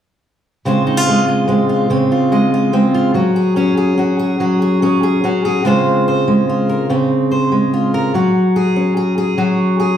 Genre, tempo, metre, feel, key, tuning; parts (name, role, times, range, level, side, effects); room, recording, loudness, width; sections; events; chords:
folk; 144 BPM; 3/4; straight; Db major; A4 = 440 Hz
fingerpicked steel-string acoustic guitar; accompaniment; 0.7-10.0 s; Db3 to Eb5; -12 LUFS; equal
wet large studio reverb, RT60 1.2 s; band playing live in one room; -12 LUFS; side -9 dB against mid
0.7-5.6 A section; 5.6-10.0 B section
0.7 Dbmaj7; 3.2 Gbsus2; 5.6 Dbmaj7; 8.1 Gbsus2